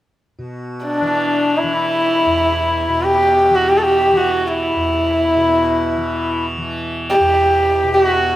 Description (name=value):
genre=indian classical, Hindustani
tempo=free time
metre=none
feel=none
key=E raga bhimpalasi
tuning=A4 = 439 Hz
part: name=tanpura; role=drone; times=0.4-8.4 s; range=E2 to E3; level=-23 LUFS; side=equal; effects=none
part: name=dark sarangi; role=melody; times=0.8-8.4 s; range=D4 to A4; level=-15 LUFS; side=right 1 dB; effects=none
part: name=hand-pumped harmonium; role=second line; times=1.0-8.4 s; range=D4 to G4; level=-22 LUFS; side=left 6 dB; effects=none
room=moderate small room reverb, RT60 0.5 s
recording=none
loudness=-14 LUFS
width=side -14 dB against mid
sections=0.4-8.4 A section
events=none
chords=none